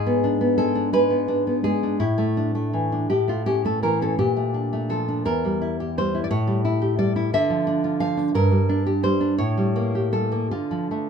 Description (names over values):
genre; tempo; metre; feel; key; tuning
romantic piece for solo classical guitar; 48-60 BPM (dotted quarters); 6/8; rubato; unclear; A4 = 439 Hz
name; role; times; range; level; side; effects
nylon-string guitar; solo; 0.0-11.1 s; E2 to F5; -20 LUFS; equal; none
room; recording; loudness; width
moderate small room ambience, RT60 0.5 s; minimal, uncompressed stereo recording; -20 LUFS; side -6 dB against mid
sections
0.0-11.1 A section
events
none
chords
0.0 G#dim; 2.0 Asus4; 3.1 A; 4.2 Bbmaj7; 5.2 Edim; 6.3 A7; 7.3 Dm; 8.3 Gm; 9.4 A7b9; 10.5 Dm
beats
0.91 | 1.99 3.08 | 4.17 5.25 | 6.30 7.33 | 8.33 9.38 | 10.52